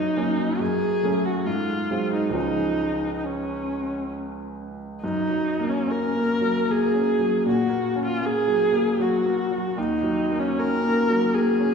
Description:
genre	classical, romantic duo for viola and grand piano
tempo	66-79 BPM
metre	3/4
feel	rubato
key	Db major, F# major from 5.0 s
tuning	A4 = 440 Hz
part	warm viola	melody	0.0-11.7 s	Db4 to A#4	-24 LUFS	equal	none
part	clear grand piano	accompaniment	0.0-11.7 s	Db2 to Db4	-24 LUFS	equal	none
room	wet scoring stage reverb, RT60 1.8 s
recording	recorded in a church or concert hall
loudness	-21 LUFS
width	side -6 dB against mid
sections	0.0-5.0 A section; 5.0-11.7 B section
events	none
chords	0.0 Gb6; 0.6 Gbm; 1.5 Ab7; 2.4 Db; 5.0 F#; 7.5 F#/A#; 9.8 D#m7

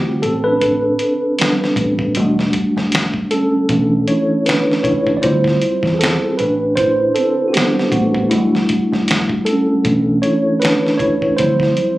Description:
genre	R&B, neo-soul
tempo	78 BPM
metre	4/4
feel	swing 55% on 16ths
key	unclear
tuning	A4 = 440 Hz
part	mellow tine electric piano	accompaniment	0.0-12.0 s	D3 to D5	-14 LUFS	equal	medium stereo tremolo
part	deep dub fingered electric bass	bass	0.2-11.7 s	E1 to E2	-22 LUFS	equal	none
part	dusty soul sampler-style drum kit	drums	0.2-12.0 s	finger snaps, hi-hat, kick drum, snare drum	-20 LUFS	equal	none
room	moderate studio reverb, RT60 0.8 s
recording	recorded on a phone in the room, studio ambience, compression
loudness	-13 LUFS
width	side -17 dB against mid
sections	0.0-12.0 A section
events	tine electric piano solo 0.0-12.0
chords	0.2 Am11; 2.2 Em11; 3.7 Bm11; 5.2 Dm11; 6.4 Am11; 8.3 Em11; 9.8 Bm11; 11.4 Dm11

